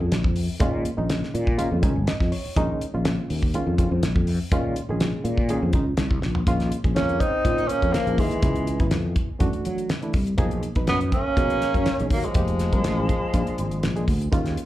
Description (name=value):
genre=electric jazz fusion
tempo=122 BPM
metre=4/4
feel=straight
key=Bb minor, Bb phrygian from 6.5 s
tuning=A4 = 439 Hz
part: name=barky reed electric piano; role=accompaniment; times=0.0-14.6 s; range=A#2 to Ab5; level=-29 LUFS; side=right 1 dB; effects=overdrive, fast tremolo, plate reverb, slapback echo
part: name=sustaining fretless electric bass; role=bass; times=0.0-14.5 s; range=F1 to F#3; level=-25 LUFS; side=equal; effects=analog chorus
part: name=damped 70s drum kit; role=drums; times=0.1-14.7 s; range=hi-hat, kick drum, snare drum, toms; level=-24 LUFS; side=equal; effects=none
part: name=mellow tenor saxophone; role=melody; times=7.0-14.1 s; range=Ab3 to Eb4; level=-25 LUFS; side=right 1 dB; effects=plate reverb, slapback echo, analog delay
part: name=bright trombone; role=second line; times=7.0-14.1 s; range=E3 to C4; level=-30 LUFS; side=left 2 dB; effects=plate reverb, slapback echo
room=light reverb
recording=live gig heard through the venue's PA, club reverb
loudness=-21 LUFS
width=side -14 dB against mid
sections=0.0-6.5 A section; 6.5-14.7 B section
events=reed electric piano fill 1.6-2.6; drum fill 6.2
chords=0.0 Bbm11; 6.5 Bbm9; 8.4 Dbm7; 9.4 D9; 10.4 Bmaj9; 12.4 Fm9; 13.3 Bb7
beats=0.12 | 0.61 1.10 1.58 2.07 | 2.56 3.05 3.54 4.03 | 4.51 5.00 5.49 5.98 | 6.47 6.96 7.45 7.94 | 8.43 8.92 9.41 9.90 | 10.39 10.88 11.37 11.87 | 12.36 12.85 13.34 13.83 | 14.32